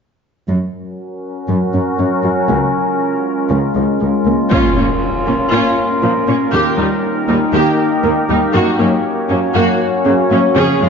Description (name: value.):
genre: cinematic.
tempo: 119 BPM.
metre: 4/4.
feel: straight.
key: unclear.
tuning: A4 = 438 Hz.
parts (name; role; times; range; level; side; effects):
evolving wavetable pad; sustained chords; 0.9-10.9 s; Gb3 to Db5; -16 LUFS; left 1 dB; chorus, built-in reverb, low-pass filter.
thumb-piano-like synth pluck; arpeggios; 0.5-10.9 s; Db3 to Gb4; -20 LUFS; left 3 dB; chorus, low-pass filter, digital delay.
warm studio cello section; bass; 0.5-10.9 s; Db2 to Bb2; -20 LUFS; right 2 dB; none.
rich symphonic viola section; accompaniment; 4.5-10.9 s; Db3 to Ab4; -17 LUFS; right 2 dB; low-pass filter.
impact; sound effects; 4.5-6.5 s; none; -23 LUFS; equal; none.
room: moderate recital hall reverb, RT60 1.5 s.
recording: nothing above 7.6 kHz.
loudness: -12 LUFS.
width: side -6 dB against mid.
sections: 0.5-4.5 A section; 4.5-10.9 B section.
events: filter sweep 0.5-4.5; build-up 4.5-10.9; impact 4.5-6.5.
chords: 0.5 Gb; 2.5 Db6; 4.5 Bbm; 6.5 Eb; 8.5 Gb.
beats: | 0.48 0.98 1.49 1.99 | 2.50 3.00 3.50 4.01 | 4.51 5.02 5.52 6.03 | 6.53 7.04 7.54 8.04 | 8.55 9.05 9.56 10.06 | 10.56.